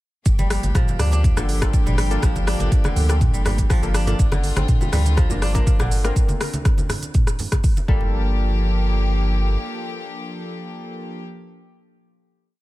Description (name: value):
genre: afro house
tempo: 122 BPM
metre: 4/4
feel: straight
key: G minor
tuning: A4 = 441 Hz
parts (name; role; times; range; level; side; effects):
- bright chamber string section; sustained chords; 0.3-11.2 s; D3 to G4; -30 LUFS; left 1 dB; sidechain pumping
- warm sub bass; bass; 0.3-9.6 s; G1 to D2; -20 LUFS; equal; sidechain pumping
- afro-pop drum kit; drums; 0.3-7.9 s; hi-hat, rim click, shaker, toms; -27 LUFS; equal; small room ambience
- electronic kick drum; drums; 0.3-8.0 s; none; -18 LUFS; equal; small room ambience
- kora; arpeggios; 0.4-10.0 s; D3 to D4; -29 LUFS; equal; sidechain pumping, digital delay
- congas; percussion; 0.4-8.1 s; none; -29 LUFS; right 1 dB; none
- warm analog keys; stabs; 1.4-11.2 s; Bb3 to Bb4; -32 LUFS; left 3 dB; chorus, sidechain pumping, digital delay
- bongos; percussion; 4.3-5.9 s; none; -34 LUFS; left 2 dB; none
room: small room ambience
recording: none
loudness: -17 LUFS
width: side -17 dB against mid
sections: 0.3-8.1 drop; 8.1-12.1 final hit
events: drop 0.3-8.1; band accent 7.9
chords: 0.3 Gm7; 4.2 Bb/G; 7.9 Gm7